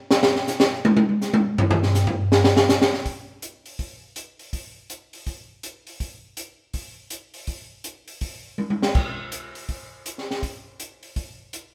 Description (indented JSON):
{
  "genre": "jazz",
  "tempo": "163 BPM",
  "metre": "4/4",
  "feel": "swing 63% on 8ths",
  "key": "none",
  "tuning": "none",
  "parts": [
    { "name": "open jazz drum kit", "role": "drums", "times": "0.1-11.6 s", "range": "crash cymbal, hi-hat, kick drum, snare drum, toms", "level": "-23 LUFS", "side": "equal", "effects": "none" }
  ],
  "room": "moderate stone room reverb, RT60 1.3 s",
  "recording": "band playing live in one room",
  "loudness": "-21 LUFS",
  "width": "mono",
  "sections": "0.0-3.1 A section; 3.1-11.7 B section",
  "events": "drum solo 0.0-3.1; drum fill 8.6-9.0",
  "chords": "none"
}